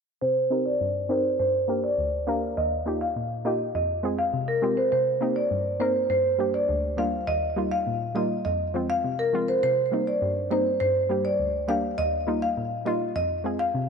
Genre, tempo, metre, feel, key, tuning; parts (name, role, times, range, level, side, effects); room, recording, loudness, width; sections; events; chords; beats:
dancehall; 102 BPM; 4/4; straight; C minor; A4 = 438 Hz
marimba with medium mallets; melody; 0.2-13.7 s; Bb4 to F5; -24 LUFS; equal; low-pass filter
soft round pluck; accompaniment; 0.2-13.9 s; D2 to Bb4; -28 LUFS; equal; chorus, low-pass filter
moderate lush hall reverb, RT60 2.5 s; dark, warm production; -23 LUFS; side -6 dB against mid
0.2-9.6 A section; 9.6-13.9 B section
filter sweep 0.2-9.6
0.2 Cm7; 1.4 Gm; 2.6 Ebadd9; 3.7 Fm; 4.9 Cm7; 6.1 Gm; 7.3 Ebadd9; 8.5 Fm; 9.6 Cm7; 10.8 Gm; 12.0 Ebadd9; 13.2 Fm
| 0.22 0.80 1.39 1.98 | 2.57 3.16 3.75 4.33 | 4.92 5.51 6.10 6.69 | 7.28 7.86 8.45 9.04 | 9.63 10.22 10.80 11.39 | 11.98 12.57 13.16 13.74